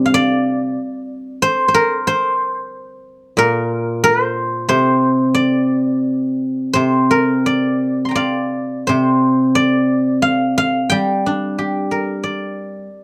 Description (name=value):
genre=chinese traditional, Chinese solo plucked strings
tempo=82-96 BPM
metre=4/4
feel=rubato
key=unclear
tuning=A4 = 440 Hz
part: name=guzheng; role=solo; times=0.0-13.0 s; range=Bb2 to C6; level=-17 LUFS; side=equal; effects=none
room=moderate studio reverb, RT60 0.5 s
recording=close, detailed microphones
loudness=-17 LUFS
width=mono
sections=0.0-13.0 A section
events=none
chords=none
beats=| 0.11 0.76 1.41 2.05 | 2.71 3.38 4.04 4.71 | 5.37 6.05 6.76 7.48 | 8.20 8.90 9.58 10.26 | 10.93 11.59 12.23 12.87